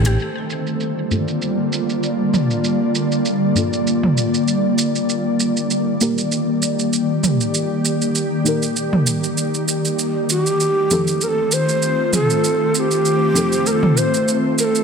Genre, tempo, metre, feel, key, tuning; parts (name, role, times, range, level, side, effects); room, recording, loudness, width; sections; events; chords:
organic downtempo; 98 BPM; 4/4; swing 55% on 16ths; G minor; A4 = 439 Hz
deep mellow chord stab; accompaniment; 0.0-14.8 s; G2 to Bb4; -24 LUFS; left 1 dB; chorus, ping-pong delay
ethereal airy pad; sustained chords; 0.0-14.8 s; D3 to D5; -19 LUFS; equal; ensemble chorus, built-in reverb
deep house drum kit; drums; 0.1-14.8 s; hi-hat, shaker, toms; -21 LUFS; right 2 dB; overdrive, low-pass filter on perc, low-pass filter on hats, low-pass filter on toms, soft clipping on snare, low-pass filter on snare
breathy mellow Native American-style cedar flute; melody; 10.3-14.8 s; G4 to C5; -19 LUFS; equal; ping-pong delay
wet echo chamber reverb, RT60 2.2 s; dense, heavily limited modern master; -16 LUFS; side -6 dB against mid
0.2-14.8 A section
0.2 Gm7; 5.1 Eb; 10.0 F7